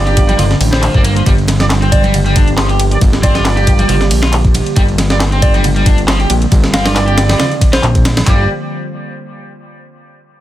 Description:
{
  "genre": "breakbeat, breaks",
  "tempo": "137 BPM",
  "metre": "4/4",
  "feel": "swing 54% on 16ths",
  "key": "G minor",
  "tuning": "A4 = 444 Hz",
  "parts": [
    { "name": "warbly tape-like pad", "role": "sustained chords", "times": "0.0-8.5 s", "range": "D3 to G4", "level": "-20 LUFS", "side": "right 1 dB", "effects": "chorus, built-in reverb, sidechain pumping" },
    { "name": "mellow brass ensemble", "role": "stabs", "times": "0.0-8.4 s", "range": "Bb3 to D5", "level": "-21 LUFS", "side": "right 4 dB", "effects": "vintage 12-bit sampler grit, dub echo" },
    { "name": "fat analog bass", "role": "bass", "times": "0.0-8.5 s", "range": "G1 to Bb1", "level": "-14 LUFS", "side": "equal", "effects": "tube saturation" },
    { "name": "overdriven semi-hollow guitar", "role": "riff", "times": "0.1-8.5 s", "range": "F3 to G4", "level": "-20 LUFS", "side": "left 1 dB", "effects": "vintage 12-bit sampler grit, dub echo" },
    { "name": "house drum kit", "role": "drums", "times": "0.1-8.2 s", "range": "handclaps, hi-hat, ride cymbal", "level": "-22 LUFS", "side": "left 1 dB", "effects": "none" },
    { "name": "breakbeat sampler-style drum kit", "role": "drums", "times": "0.2-8.4 s", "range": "handclaps, hi-hat, kick drum, ride cymbal, snare drum", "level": "-13 LUFS", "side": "equal", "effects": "none" },
    { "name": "congas", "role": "percussion", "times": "0.3-8.3 s", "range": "none", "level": "-23 LUFS", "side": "right 2 dB", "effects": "none" },
    { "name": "soft struck synth lead", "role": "melody", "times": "0.7-8.1 s", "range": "C5 to F5", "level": "-24 LUFS", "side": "equal", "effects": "chorus, telephone sound, dub echo" }
  ],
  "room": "light reverb",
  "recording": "dense, heavily limited modern master",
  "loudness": "-9 LUFS",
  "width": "side -13 dB against mid",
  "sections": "0.0-8.3 A section; 8.3-10.0 B section",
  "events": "drop 0.0-8.3",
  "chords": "0.0 Gm7"
}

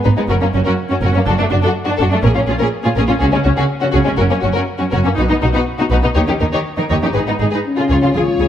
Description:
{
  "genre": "cinematic, heroic adventure film score",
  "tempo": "123 BPM",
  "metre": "4/4",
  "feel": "straight",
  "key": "F# major",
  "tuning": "A4 = 440 Hz",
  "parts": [
    { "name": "warm symphonic violin section", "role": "melody", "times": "0.0-8.5 s", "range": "C#4 to C#5", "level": "-22 LUFS", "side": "left 4 dB", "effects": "none" },
    { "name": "warm symphonic violin section", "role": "second line", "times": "0.1-8.4 s", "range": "G#3 to C#5", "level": "-21 LUFS", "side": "left 2 dB", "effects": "none" },
    { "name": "rich symphonic viola section", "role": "accompaniment", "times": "0.1-8.5 s", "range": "B3 to G#4", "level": "-20 LUFS", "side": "equal", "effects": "none" },
    { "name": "rich symphonic double bass section", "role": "bass", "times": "0.1-8.4 s", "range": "F#1 to D#2", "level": "-18 LUFS", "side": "right 2 dB", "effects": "none" },
    { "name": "warm symphonic cello section", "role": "bass", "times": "0.1-8.5 s", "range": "F#2 to D#3", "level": "-20 LUFS", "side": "right 2 dB", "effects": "none" },
    { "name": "dark French horn section", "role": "sustained chords", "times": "7.7-8.5 s", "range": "C#4 to E#4", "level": "-16 LUFS", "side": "left 3 dB", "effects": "none" },
    { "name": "timpani", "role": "percussion", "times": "8.2-8.5 s", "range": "C#3", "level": "-22 LUFS", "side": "left 1 dB", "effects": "none" }
  ],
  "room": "moderate scoring stage reverb, RT60 1.8 s",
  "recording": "none",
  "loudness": "-13 LUFS",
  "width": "side -10 dB against mid",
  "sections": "0.0-8.2 A section",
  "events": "build-up 0.0-8.2",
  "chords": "0.3 F#5; 1.3 D/F#; 2.2 A#m7; 3.2 C#sus4; 4.2 F#; 5.2 B; 6.2 N.C.; 7.1 G#5; 7.7 C#"
}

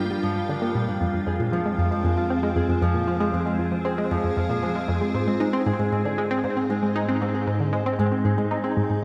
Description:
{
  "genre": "ambient, sequencer-driven space music",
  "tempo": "116 BPM",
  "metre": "4/4",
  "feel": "straight",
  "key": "unclear",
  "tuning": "A4 = 440 Hz",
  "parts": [
    { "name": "evolving wavetable pad", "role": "sustained chords", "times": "0.0-9.0 s", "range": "G3 to G5", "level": "-32 LUFS", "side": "equal", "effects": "ensemble chorus, built-in reverb, phaser" },
    { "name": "Celtic harp", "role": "arpeggios", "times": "0.0-9.0 s", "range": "F3 to C5", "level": "-30 LUFS", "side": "equal", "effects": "analog delay" },
    { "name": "tight sequenced synth", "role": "riff", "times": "0.0-8.9 s", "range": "F2 to Eb4", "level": "-26 LUFS", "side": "equal", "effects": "chorus, analog delay" },
    { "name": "analog drone", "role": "bass", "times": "0.2-9.0 s", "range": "F2 to Ab2", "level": "-35 LUFS", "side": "equal", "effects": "chorus" }
  ],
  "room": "moderate plate reverb, RT60 3.1 s",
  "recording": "echo-heavy mix",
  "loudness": "-24 LUFS",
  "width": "mono",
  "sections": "0.0-9.0 A section",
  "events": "none",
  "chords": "0.0 Gm7; 1.0 Fm; 5.1 Ab"
}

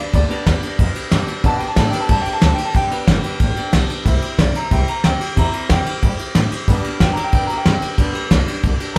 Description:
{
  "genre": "rockabilly",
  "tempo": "184 BPM",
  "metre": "4/4",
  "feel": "straight",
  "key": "G major",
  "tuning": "A4 = 439 Hz",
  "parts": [
    { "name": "picked steel-string acoustic guitar", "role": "accompaniment", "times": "0.0-9.0 s", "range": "G2 to G4", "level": "-31 LUFS", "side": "equal", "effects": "none" },
    { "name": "tack piano", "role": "accompaniment", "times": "0.0-9.0 s", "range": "G3 to Bb5", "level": "-25 LUFS", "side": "equal", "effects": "none" },
    { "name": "upright bass", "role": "bass", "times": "0.1-9.0 s", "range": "G1 to B2", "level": "-23 LUFS", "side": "equal", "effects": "none" },
    { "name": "soft brush drum kit", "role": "drums", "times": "0.1-9.0 s", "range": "kick drum, ride cymbal, snare drum", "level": "-20 LUFS", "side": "equal", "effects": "none" }
  ],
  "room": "moderate studio ambience, RT60 0.5 s",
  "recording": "band playing live in one room",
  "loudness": "-17 LUFS",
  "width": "mono",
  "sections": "0.0-9.0 A section",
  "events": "honky-tonk piano solo 0.0-9.0",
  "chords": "0.0 G; 4.1 C; 6.7 G"
}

